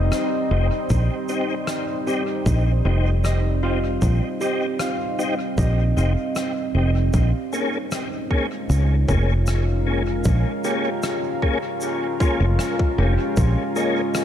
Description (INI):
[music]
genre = ambient dub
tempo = 77 BPM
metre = 4/4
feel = straight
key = Bb dorian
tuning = A4 = 440 Hz
[part]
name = deep dark ambient pad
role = sustained chords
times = 0.0-14.2 s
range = G3 to F5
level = -26 LUFS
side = equal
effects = chorus, built-in reverb
[part]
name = fingered electric bass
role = bass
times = 0.0-13.5 s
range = F1 to Db2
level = -19 LUFS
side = equal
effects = none
[part]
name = rim click and shaker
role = drums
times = 0.1-14.2 s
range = none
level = -32 LUFS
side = left 1 dB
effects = dub echo
[part]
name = tonewheel organ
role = stabs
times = 0.5-14.0 s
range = Bb3 to Ab4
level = -28 LUFS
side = left 2 dB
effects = chorus vibrato, fast rotary speaker, dub echo
[part]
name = electronic kick drum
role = drums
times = 0.9-13.5 s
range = none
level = -22 LUFS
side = equal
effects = none
[part]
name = concert harp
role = arpeggios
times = 2.1-14.2 s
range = F4 to F5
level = -31 LUFS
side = equal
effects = dub echo
[sound]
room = light reverb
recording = dark, warm production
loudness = -19 LUFS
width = side -10 dB against mid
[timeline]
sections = 0.0-7.1 A section; 7.1-14.2 B section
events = none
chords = 0.0 Cm; 7.1 Bbm7